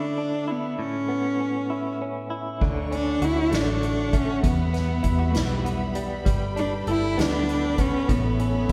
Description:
six-eight pop ballad; 66 BPM (dotted quarters); 6/8; straight; D major; A4 = 440 Hz
rich cello; melody; 0.0-8.7 s; G3 to E4; -28 LUFS; equal
direct-recorded clean electric guitar; accompaniment; 0.0-8.7 s; E2 to A4; -32 LUFS; equal; tremolo
rich studio string section; sustained chords; 2.6-8.7 s; G3 to C#6; -37 LUFS; equal
vintage muted fingered electric bass; bass; 2.6-8.7 s; G1 to E2; -30 LUFS; equal
soft-mallet drum kit; drums; 2.6-8.7 s; crash cymbal, hi-hat, kick drum, snare drum; -29 LUFS; equal
moderate scoring stage reverb, RT60 1.6 s; recorded in a church or concert hall; -24 LUFS; mono
0.0-2.6 A section; 2.6-8.7 B section
0.0 Dsus2; 0.8 Aadd9; 2.6 Dmaj7; 4.4 Emadd9; 6.3 Gadd9; 8.1 Aadd9

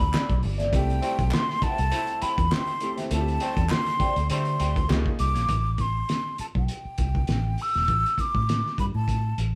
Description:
lush 1970s-style soul; 101 BPM; 4/4; swing 54% on 16ths; A4 = 440 Hz
breathy mellow jazz flute; melody; 0.0-9.4 s; G5 to E6; -30 LUFS; equal
clear grand piano; accompaniment; 0.0-5.5 s; Ab3 to Ab4; -38 LUFS; equal
electric guitar through a small old amp; riff; 0.0-5.5 s; A3 to D5; -37 LUFS; equal; wah, spring reverb
vintage muted fingered electric bass; bass; 0.0-9.6 s; E1 to D3; -29 LUFS; equal
cloth-damped thuddy drum kit; drums; 0.0-9.5 s; hi-hat, kick drum, snare drum; -31 LUFS; equal
group handclap; percussion; 0.1-5.1 s; -40 LUFS; equal
brilliant trombone section; stabs; 1.0-4.7 s; G3 to E4; -38 LUFS; equal
light reverb; band playing live in one room; -25 LUFS; mono
0.0-5.5 A section; 5.5-9.6 B section
0.0 C69; 0.7 Am7; 3.1 D7sus4; 4.9 Db69; 5.5 A7(no3)

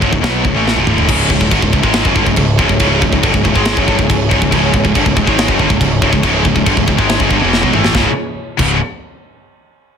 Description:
heavy metal; 140 BPM; 4/4; straight; C# minor; A4 = 443 Hz
dark studio string section; sustained chords; 0.0-8.2 s; E3 to C#5; -24 LUFS; equal
scooped high-gain guitar; riff; 0.0-8.8 s; C#2 to B3; -16 LUFS; left 12 dB; distortion
scooped high-gain guitar; riff; 0.0-8.8 s; C#2 to B3; -17 LUFS; right 11 dB; distortion
sludgy distorted guitar; riff; 0.0-1.1, 4.5-8.8 s; C#2 to B3; -20 LUFS; equal; overdrive
fuzz picked electric bass; bass; 0.0-8.8 s; C#1 to B1; -18 LUFS; equal; overdrive
tight metal drum kit; drums; 0.0-8.7 s; china cymbal, crash cymbal, kick drum, snare drum, toms; -16 LUFS; equal
light reverb; dense, heavily limited modern master; -10 LUFS; side -7 dB against mid
0.0-1.1 A section; 1.1-7.9 B section; 7.9-9.7 C section
drum fill 0.7-1.1, 7.5-7.9
0.0 C#m; 7.9 C#5

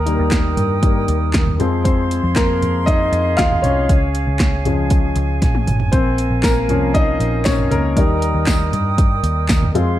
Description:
piano-driven pop; 118 BPM; 4/4; straight; A4 = 440 Hz
clear upright piano; accompaniment; 0.0-10.0 s; Eb3 to F5; -20 LUFS; left 2 dB
small flute group; sustained chords; 0.0-10.0 s; Ab4 to Eb6; -25 LUFS; right 4 dB
vintage muted picked electric bass; bass; 0.0-10.0 s; Ab1 to G2; -20 LUFS; equal
deep house drum kit; drums; 0.1-9.9 s; handclaps, hi-hat, kick drum, snare drum, toms; -18 LUFS; equal; overdrive
tambourine; percussion; 6.4-9.6 s; -34 LUFS; left 7 dB
light reverb, studio ambience; dark, warm production; -14 LUFS; side -13 dB against mid
0.0-10.0 A section
upright piano solo 0.0-10.0; drum fill 5.4-5.9
0.0 Eb; 1.6 Fm; 3.9 Db; 5.9 Bbm; 8.0 Eb

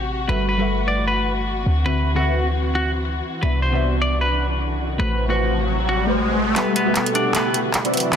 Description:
future bass; 153 BPM; 4/4; swing 56% on 16ths, half-time; A4 = 440 Hz
soft round pluck; accompaniment; 0.0-8.2 s; C3 to E5; -26 LUFS; left 1 dB; analog chorus, ping-pong delay
dark studio string section; sustained chords; 0.0-8.2 s; B2 to F#4; -28 LUFS; left 1 dB
warm 808-style bass; bass; 0.0-6.5 s; G1 to D2; -22 LUFS; equal
semi-hollow electric guitar; melody; 0.3-8.2 s; B3 to D5; -24 LUFS; equal; ping-pong delay
riser; sound effects; 4.3-8.2 s; -26 LUFS; left 1 dB
soft supersaw; riff; 6.6-8.2 s; B3 to G5; -22 LUFS; equal; low-pass filter
trap drum kit; drums; 6.6-8.2 s; handclaps, hi-hat; -22 LUFS; right 1 dB; low-pass filter on snare, low-pass filter on hats
moderate lush hall reverb, RT60 2.0 s, digital ambience; dense, heavily limited modern master; -18 LUFS; side -8 dB against mid
0.0-6.6 A section; 6.6-8.2 B section
riser 4.3-6.6, 6.6-8.2; build-up 6.6-8.2; drum fill 6.6-8.2
0.3 Gmaj13; 1.7 D13; 3.4 Cmaj9#11; 5.0 Am69; 6.6 Gmaj13

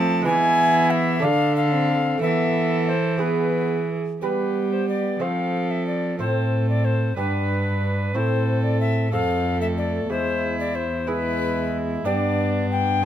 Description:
classical, renaissance-style consort dance; 61 BPM (dotted quarters); 6/8; straight; A4 = 442 Hz
alto recorder; melody; 0.0-13.1 s; B4 to A5; -25 LUFS; left 3 dB
warm viola; second line; 0.0-13.0 s; C4 to B4; -28 LUFS; right 5 dB
lute; accompaniment; 0.0-13.1 s; E2 to D5; -31 LUFS; right 5 dB
warm trombone; accompaniment; 0.0-13.1 s; G#3 to D4; -28 LUFS; left 4 dB
rich cello; bass; 0.0-13.1 s; E2 to G3; -24 LUFS; right 1 dB
light reverb; -20 LUFS; side -10 dB against mid
0.0-4.2 A section; 4.2-13.1 B section
0.3 E; 1.2 Dm; 2.2 Esus4; 3.2 E; 4.2 G; 5.2 F; 6.2 Am; 7.2 G; 8.1 Am; 9.1 F; 10.1 E; 12.1 G

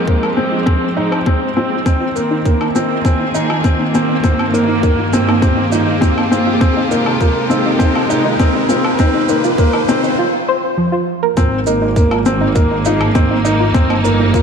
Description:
piano and strings electronica; 101 BPM; 4/4; straight; F minor; A4 = 442 Hz
rich studio string section; sustained chords; 0.0-14.4 s; G2 to Ab4; -19 LUFS; right 3 dB; sidechain pumping
riser; sound effects; 0.8-10.2 s; -26 LUFS; right 1 dB
soft round pluck; arpeggios; 0.1-14.4 s; F3 to C5; -20 LUFS; equal; chorus, sidechain pumping, tape echo
felt-muted upright piano; riff; 0.1-14.4 s; Bb3 to Eb4; -16 LUFS; left 2 dB; tape echo
electronic kick drum; drums; 0.1-14.4 s; -14 LUFS; equal
woodblock and shaker; drums; 0.2-14.4 s; -27 LUFS; equal; high-pass filter on perc, high-pass filter on room
warm symphonic double bass section; bass; 11.4-14.4 s; G1 to Ab1; -18 LUFS; right 1 dB; sidechain pumping
wet lush hall reverb, RT60 2.3 s; dark, warm production; -12 LUFS; side -6 dB against mid
0.0-11.4 A section; 11.4-14.4 B section
build-up 0.0-11.4; filter sweep on synth arpeggio sound 0.0-11.4; riser 0.8-10.2; break 10.2-11.4; drop 11.4-14.4
0.0 Fmadd9/Ab; 1.9 Abadd9; 4.2 Ebadd9/G; 6.6 Fmadd9; 11.4 Abadd9; 13.7 Ebadd9/G

